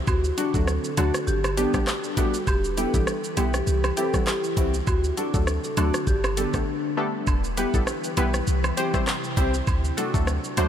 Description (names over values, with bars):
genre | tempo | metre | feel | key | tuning
dancehall | 100 BPM | 4/4 | swing 56% on 16ths | unclear | A4 = 440 Hz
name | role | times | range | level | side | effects
ethereal airy pad | sustained chords | 0.0-10.7 s | D4 to B4 | -32 LUFS | left 1 dB | ensemble chorus, built-in reverb, tremolo, sidechain pumping
marimba with medium mallets | melody | 0.1-6.5 s | F#4 to A4 | -30 LUFS | right 1 dB | ping-pong delay
clean 808-style bass | bass | 0.1-10.7 s | E1 to D2 | -26 LUFS | equal | none
afro-pop drum kit | drums | 0.1-10.7 s | handclaps, hi-hat, kick drum, rim click, shaker | -27 LUFS | equal | none
woodblock and cabasa | percussion | 0.1-10.7 s | none | -36 LUFS | right 7 dB | none
glassy wavetable pluck | accompaniment | 0.4-10.7 s | D3 to C5 | -30 LUFS | left 2 dB | chorus
nylon-string guitar | arpeggios | 0.4-10.7 s | A3 to A4 | -31 LUFS | left 1 dB | analog chorus, ping-pong delay
room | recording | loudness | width
light reverb | none | -21 LUFS | side -9 dB against mid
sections
0.0-10.7 A section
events
break 6.7-7.3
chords
0.1 D; 1.3 Gadd9; 2.5 Em; 3.7 C; 4.9 D; 6.1 Gadd9; 7.3 Em; 8.5 C; 9.7 D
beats
| 0.07 0.67 1.27 1.87 | 2.47 3.07 3.67 4.27 | 4.87 5.47 6.07 6.67 | 7.27 7.87 8.47 9.07 | 9.67 10.27